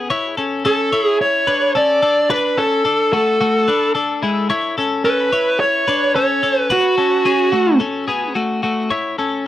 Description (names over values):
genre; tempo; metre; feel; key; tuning
indie pop; 109 BPM; 4/4; straight; A major; A4 = 440 Hz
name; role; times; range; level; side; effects
twelve-string electric guitar; arpeggios; 0.0-9.5 s; G#3 to C#5; -19 LUFS; left 3 dB; none
dark smooth lead guitar; melody; 0.7-7.8 s; F#4 to D5; -16 LUFS; right 1 dB; overdrive
room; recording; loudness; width
light reverb; dry, close 1970s-style studio recording, vinyl crackle; -14 LUFS; side -13 dB against mid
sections
0.1-9.5 A section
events
none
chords
0.1 A; 2.0 D; 4.5 A; 6.7 F#m; 8.9 A